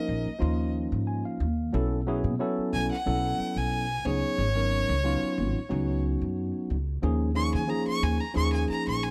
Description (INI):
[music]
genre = jazz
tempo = 91 BPM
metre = 4/4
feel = swing 54% on 16ths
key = unclear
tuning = A4 = 440 Hz
[part]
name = clear violin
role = melody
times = 0.0-9.1 s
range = Db5 to Db6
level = -33 LUFS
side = equal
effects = slapback echo
[part]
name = tine electric piano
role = accompaniment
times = 0.0-9.1 s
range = F3 to Ab5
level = -32 LUFS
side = equal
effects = lush chorus
[part]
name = upright bass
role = bass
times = 0.1-9.1 s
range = Ab1 to Eb3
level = -31 LUFS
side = equal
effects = none
[sound]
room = small room ambience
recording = dry, close 1970s-style studio recording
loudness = -28 LUFS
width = mono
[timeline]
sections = 0.0-9.1 A section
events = violin solo 0.0-9.1; tine electric piano fill 0.7-1.7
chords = 0.0 Eb9sus4; 1.7 B9sus4; 4.1 Db9sus4; 7.0 Eb9sus4